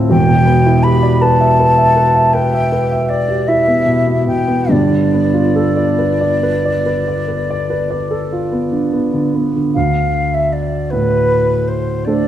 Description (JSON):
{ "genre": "classical, impressionist duo for flute and grand piano", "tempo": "46-55 BPM (dotted quarters)", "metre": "12/8", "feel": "rubato", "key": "D dorian", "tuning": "A4 = 440 Hz", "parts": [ { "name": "dark grand piano", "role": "accompaniment", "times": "0.0-12.3 s", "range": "E1 to F5", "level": "-14 LUFS", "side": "right 1 dB", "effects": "none" }, { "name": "mellow concert flute", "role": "melody", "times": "0.1-12.3 s", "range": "B4 to B5", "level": "-17 LUFS", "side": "left 1 dB", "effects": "none" } ], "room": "wet recital hall reverb, RT60 1.5 s", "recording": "dark, warm production", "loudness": "-12 LUFS", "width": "side -11 dB against mid", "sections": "0.0-9.7 A section; 9.7-12.3 B section", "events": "none", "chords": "0.1 Em7; 4.7 G9; 9.7 D5" }